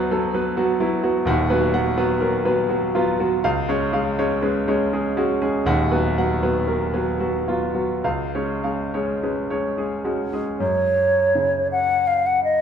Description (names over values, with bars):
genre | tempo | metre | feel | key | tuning
classical, romantic duo for flute and grand piano | 66-88 BPM | 3/4 | rubato | unclear | A4 = 440 Hz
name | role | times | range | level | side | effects
clear grand piano | accompaniment | 0.0-12.6 s | D#1 to F#5 | -20 LUFS | equal | none
mellow hollow silver concert flute | melody | 10.6-12.6 s | C#5 to F#5 | -17 LUFS | equal | none
room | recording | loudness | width
moderate scoring stage reverb, RT60 1.7 s | minimal, uncompressed stereo recording | -19 LUFS | side -8 dB against mid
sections
0.0-10.6 A section; 10.6-12.6 B section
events
none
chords
0.0 Bm/D; 1.3 B/D#; 3.4 C#; 5.7 B/D#; 8.0 C#; 10.6 F#5